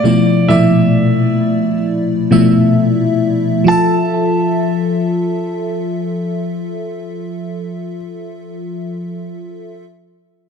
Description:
R&B; 66 BPM; 4/4; straight; F major; A4 = 440 Hz
dark concert grand piano; melody; 0.0-8.0 s; D5 to A5; -20 LUFS; right 2 dB; tape echo
FM electric piano with soft pad layer; accompaniment; 0.0-9.8 s; Bb2 to E5; -14 LUFS; left 1 dB; chorus
moderate plate reverb, RT60 2.4 s; dense, heavily limited modern master; -12 LUFS; side -6 dB against mid
0.0-3.7 A section; 3.7-7.3 B section
0.0 Dm69; 3.7 Fmaj7

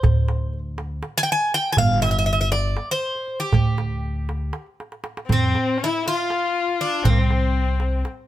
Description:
Turkish makam ensemble; 240 BPM (eighths); 7/8; straight; G makam hicaz; A4 = 440 Hz
Greek bouzouki; melody; 0.0-8.0 s; C4 to Ab5; -23 LUFS; equal; plate reverb
upright bass; bass; 0.0-8.0 s; G1 to F2; -22 LUFS; left 1 dB
darbuka; percussion; 0.0-8.2 s; -23 LUFS; right 4 dB
clear kamancheh; second line; 5.3-8.1 s; Bb3 to F4; -25 LUFS; left 5 dB
light reverb; -19 LUFS; side -13 dB against mid
0.0-5.3 A section; 5.3-8.3 B section
drum fill 4.8-5.3

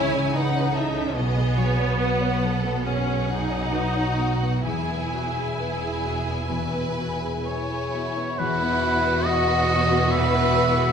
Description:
cinematic, emotional film score for orchestra; 60-74 BPM; 4/4; rubato; E major; A4 = 440 Hz
warm symphonic violin section; melody; 0.0-10.9 s; F#4 to G#5; -30 LUFS; left 4 dB
rich studio violin section; second line; 0.0-10.9 s; E4 to C#5; -30 LUFS; left 2 dB
felt-muted upright piano; accompaniment; 0.0-10.9 s; B1 to E5; -31 LUFS; left 1 dB
rich studio viola section; accompaniment; 0.0-10.9 s; E3 to E4; -29 LUFS; right 2 dB
concert harp; arpeggios; 0.0-10.9 s; B2 to B5; -32 LUFS; left 6 dB
rich studio double bass section; bass; 0.0-10.9 s; E1 to C#2; -29 LUFS; right 3 dB
warm studio cello section; bass; 0.0-10.9 s; E2 to C#3; -29 LUFS; right 2 dB
warm oboe; second line; 7.5-10.9 s; B4 to E5; -24 LUFS; right 2 dB
dark French horn section; sustained chords; 10.1-10.9 s; B4; -29 LUFS; left 2 dB
wet scoring stage reverb, RT60 1.7 s; minimal, uncompressed stereo recording; -21 LUFS; side -7 dB against mid
0.0-8.4 A section; 8.4-10.9 B section
0.0 C#madd9; 1.2 Bsus2; 4.7 Eadd9

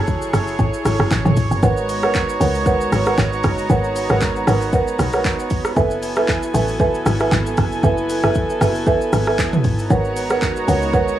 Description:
amapiano; 116 BPM; 4/4; swing 55% on 16ths; G# phrygian; A4 = 441 Hz
dark studio string section; sustained chords; 0.0-11.2 s; F#3 to A#5; -23 LUFS; equal; cassette tape
woody log drum bass; bass; 0.0-11.2 s; F#1 to C#2; -20 LUFS; equal
deep house drum kit; drums; 0.1-11.2 s; handclaps, hi-hat, kick drum, rim click, shaker, toms; -21 LUFS; equal; cassette tape
folk marimba with medium mallets; stabs; 1.6-11.2 s; A4 to G#5; -21 LUFS; right 2 dB; cassette tape, tape echo
little or no reverb; home recording on cassette; -16 LUFS; side -12 dB against mid
0.0-11.2 A section
0.0 F#m9; 1.6 G#m11; 5.8 F#m11; 9.9 G#m11

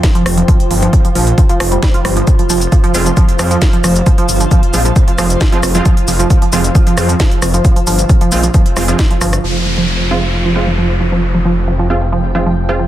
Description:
driving peak-time techno; 134 BPM; 4/4; straight; A4 = 440 Hz
tight sequenced synth; riff; 0.0-12.9 s; F3 to F4; -18 LUFS; right 2 dB; chorus, sidechain pumping, dub echo
deep dark ambient pad; drone; 0.0-9.5 s; F3; -24 LUFS; right 1 dB
electronic kick drum; drums; 0.0-9.1 s; -11 LUFS; equal
techno drum kit; drums; 0.0-9.4 s; hi-hat, rim click, shaker, snare drum; -19 LUFS; equal; sidechain pumping on hats, soft clipping on snare, sidechain pumping on perc
granular cloud pad; texture; 0.0-12.9 s; F4 to G5; -21 LUFS; right 1 dB; built-in reverb, sidechain pumping
detuned saw bass; bass; 0.3-12.9 s; F1 to F2; -15 LUFS; equal; sidechain pumping
rave stab; stabs; 2.9-12.7 s; Ab3 to F4; -20 LUFS; right 2 dB; chorus, built-in reverb, cassette tape, sidechain pumping, digital delay
downlifter; sound effects; 9.4-12.9 s; -22 LUFS; equal
light reverb; dense, heavily limited modern master; -10 LUFS; side -13 dB against mid
0.0-9.4 A section; 9.4-12.9 B section
filter sweep on synth arpeggio sound 9.4-12.9
0.0 Fm

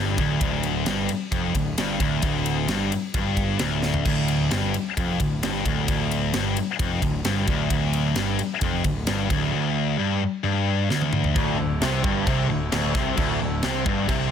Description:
heavy metal; 132 BPM; 4/4; straight; D minor; A4 = 440 Hz
high-gain distorted guitar; riff; 0.0-14.3 s; D2 to C3; -26 LUFS; left 12 dB; distortion
sludgy distorted guitar; riff; 0.0-14.3 s; D2 to C3; -26 LUFS; right 7 dB; overdrive
fuzz picked electric bass; bass; 0.0-14.3 s; D1 to C2; -30 LUFS; equal; overdrive
tight metal drum kit; drums; 0.2-14.2 s; crash cymbal, kick drum, ride cymbal, snare drum, toms; -28 LUFS; equal
pipe organ, trumpet; sustained chords; 11.4-14.3 s; D3 to E4; -35 LUFS; left 1 dB
raw garage guitar; riff; 11.4-14.3 s; D2 to C3; -30 LUFS; right 1 dB; overdrive
light reverb; dense, heavily limited modern master; -21 LUFS; side -8 dB against mid
0.0-11.4 A section; 11.4-14.3 B section
drum fill 3.8, 10.9-11.4
0.0 Dm; 11.4 D5

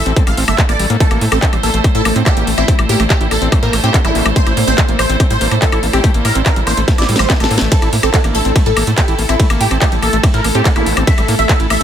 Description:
psychedelic trance; 143 BPM; 4/4; straight; A phrygian; A4 = 440 Hz
supersaw stab; melody; 0.0-11.8 s; E4 to F5; -19 LUFS; equal; phaser, sidechain pumping, dub echo
evolving wavetable pad; sustained chords; 0.0-11.8 s; A3 to C5; -22 LUFS; equal; chorus, built-in reverb, sidechain pumping
tight sequencer bass; bass; 0.0-11.8 s; G1 to A2; -17 LUFS; equal
rich studio string section; texture; 0.0-11.8 s; E4 to A5; -26 LUFS; right 2 dB; sidechain pumping
overdriven acid bass; riff; 0.1-11.8 s; G3 to E4; -22 LUFS; moving between left 4 dB and right 5 dB; distortion, auto-pan, sidechain pumping, ping-pong delay
techno drum kit; drums; 0.1-11.8 s; handclaps, hi-hat, ride cymbal, snare drum, woodblock; -19 LUFS; left 1 dB
electronic kick drum; drums; 0.2-11.6 s; -14 LUFS; equal; distortion
zap; sound effects; 4.0-4.2, 10.8-10.9 s; -26 LUFS; equal
formant-sweep wobble bass; second line; 8.0-8.6 s; C4 to D4; -32 LUFS; right 5 dB
digital ambience; -11 LUFS; side -9 dB against mid
0.0-11.8 A section
drum fill 6.9-7.7
0.0 A5

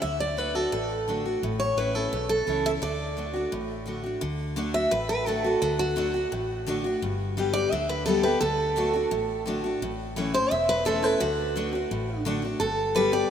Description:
honky-tonk and classic country; 172 BPM; 4/4; straight; D major; A4 = 441 Hz
picked steel-string acoustic guitar; melody; 0.0-13.3 s; F#4 to E5; -26 LUFS; right 1 dB; analog delay
picked steel-string acoustic guitar; accompaniment; 0.0-13.3 s; E2 to G4; -29 LUFS; left 2 dB
vintage muted fingered electric bass; bass; 0.0-13.2 s; E1 to D2; -35 LUFS; equal
wet lush hall reverb, RT60 3.0 s; rough home demo mix; -24 LUFS; side -8 dB against mid
0.0-4.2 A section; 4.2-13.3 B section
steel-string acoustic guitar solo 4.2-13.3
0.0 D; 1.4 A; 2.8 D; 7.0 G; 8.4 D; 9.8 A; 11.2 D; 12.6 G

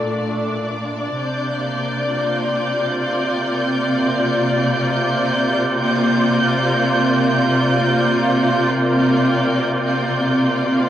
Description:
ambient; free time; A4 = 440 Hz
rich symphonic string section; sustained chords; 0.0-10.9 s; Bb2 to D5; -17 LUFS; equal; cassette tape
warm chamber violin section; texture; 1.2-10.9 s; G6; -24 LUFS; right 3 dB; cassette tape
wet small room ambience, RT60 0.5 s; home recording on cassette; -16 LUFS; side -11 dB against mid
0.0-10.9 A section
0.0 Bbmaj7; 1.1 C9sus4

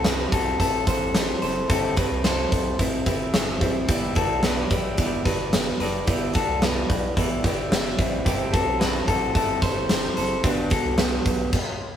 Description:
jangly indie pop; 110 BPM; 4/4; straight; A4 = 440 Hz
chorused retro synth keys; accompaniment; 0.0-11.6 s; E4 to D5; -35 LUFS; right 3 dB
electric guitar through a small old amp; accompaniment; 0.0-11.5 s; G3 to D5; -30 LUFS; right 1 dB; tube saturation
electric guitar through a small old amp; arpeggios; 0.0-11.5 s; B3 to C5; -26 LUFS; left 2 dB
round analog bass; bass; 0.0-11.5 s; F#1 to C2; -32 LUFS; equal
big rock drum kit; drums; 0.0-11.7 s; crash cymbal, hi-hat, kick drum, snare drum; -23 LUFS; equal
moderate stone room reverb, RT60 1.1 s; rough rehearsal-room recording; -20 LUFS; side -9 dB against mid
0.0-12.0 A section
stop 11.5-12.0
0.0 Am7; 3.9 Em7; 8.3 Am7/G; 10.4 Gmaj7

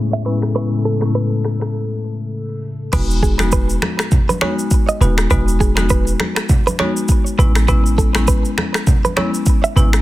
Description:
afrobeats; 101 BPM; 4/4; swing 58% on 16ths; E major; A4 = 440 Hz
hollow soft pad; sustained chords; 0.0-2.9 s; C#3 to A4; -26 LUFS; right 1 dB; chorus, sidechain pumping
direct-recorded clean electric guitar; riff; 0.1-9.9 s; G#4 to E5; -22 LUFS; right 4 dB; digital delay
afro-pop drum kit; drums; 0.1-10.0 s; crash cymbal, finger snaps, kick drum, rim click, shaker; -17 LUFS; equal; soft clipping on snare
marimba with hard mallets; accompaniment; 0.3-10.0 s; A2 to F#4; -20 LUFS; left 3 dB
clean 808-style bass; bass; 2.9-10.0 s; D#1 to A1; -16 LUFS; equal
congas; percussion; 2.9-9.9 s; -25 LUFS; right 1 dB
little or no reverb; dense, heavily limited modern master, low-pass filter; -14 LUFS; side -16 dB against mid
0.0-2.9 A section; 2.9-10.0 B section
filter sweep 0.0-2.9; break 1.7-2.9
0.0 Amaj7; 2.9 Emaj7; 7.4 Amaj7

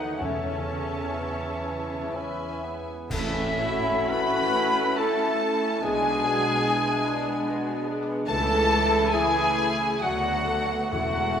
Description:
classical, slow romantic movement for symphony orchestra; 57-76 BPM; 3/4; rubato; A major; A4 = 442 Hz
muted symphonic violin section; melody; 0.0-11.4 s; E5 to B5; -30 LUFS; left 3 dB
mellow clarinet; second line; 0.0-11.4 s; B3 to C#5; -37 LUFS; equal
mellow cor anglais; second line; 0.0-11.4 s; E4 to F#5; -34 LUFS; right 2 dB
muted symphonic violin section; second line; 0.0-11.4 s; G#3 to F#5; -36 LUFS; left 2 dB
silver concert flute; second line; 0.0-11.4 s; E5 to B5; -32 LUFS; equal
muted symphonic viola section; accompaniment; 0.0-11.4 s; E3 to D#4; -34 LUFS; right 1 dB
warm bassoon; accompaniment; 0.0-11.4 s; E3 to C#4; -34 LUFS; right 4 dB
mellow French horn section; sustained chords; 0.0-11.4 s; E3 to A4; -32 LUFS; left 1 dB
concert harp; arpeggios; 0.0-11.4 s; A2 to A4; -35 LUFS; left 6 dB
muted studio double bass section; bass; 0.0-11.4 s; E1 to E2; -35 LUFS; right 1 dB
muted symphonic cello section; bass; 0.0-11.4 s; C#2 to D#3; -37 LUFS; right 2 dB
timpani; percussion; 0.2-4.5, 10.9-11.4 s; E2 to A2; -36 LUFS; left 1 dB
dark trumpet section; stabs; 3.1-11.4 s; E4 to B4; -31 LUFS; right 2 dB
clash cymbals and concert bass drum; percussion; 3.1-4.9 s; -36 LUFS; equal
wet recital hall reverb, RT60 1.7 s; recorded in a church or concert hall, faint mains hum; -23 LUFS; side -8 dB against mid
0.0-3.1 A section; 3.1-11.4 B section
band accent 3.1-4.1
0.2 A/E; 2.2 E; 3.1 A; 5.8 G#dim/B; 8.3 A/C#; 10.0 D6

